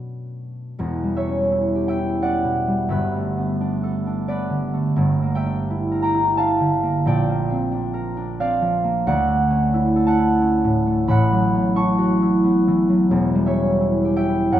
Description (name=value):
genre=classical, solo harp piece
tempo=88 BPM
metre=3/4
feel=rubato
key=unclear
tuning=A4 = 440 Hz
part: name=concert harp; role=solo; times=0.0-14.6 s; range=E1 to C#6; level=-18 LUFS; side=equal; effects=none
room=moderate recital hall reverb, RT60 1.6 s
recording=minimal, uncompressed stereo recording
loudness=-18 LUFS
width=side -11 dB against mid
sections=0.8-14.6 A section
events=none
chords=0.0 Bm7; 0.8 Em6; 2.9 G69; 5.0 Gm6; 7.0 A#69; 9.1 Dmaj9; 11.1 A69; 13.1 Em6